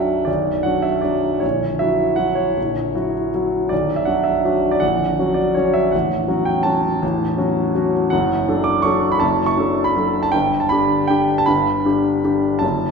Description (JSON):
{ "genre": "classical, piano waltz", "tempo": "147-172 BPM", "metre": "3/4", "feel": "rubato", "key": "unclear", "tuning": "A4 = 441 Hz", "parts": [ { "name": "clear concert grand piano", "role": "solo", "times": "0.0-12.9 s", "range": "A0 to D6", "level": "-16 LUFS", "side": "equal", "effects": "none" } ], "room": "wet scoring stage reverb, RT60 1.7 s", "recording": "recorded in a church or concert hall", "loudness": "-16 LUFS", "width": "side -5 dB against mid", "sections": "0.0-12.9 A section", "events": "none", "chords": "0.0 Bm; 1.4 F#7/A#; 3.7 Bm; 4.8 F#/A#; 5.9 F#m/A; 8.1 D/F#; 10.3 G" }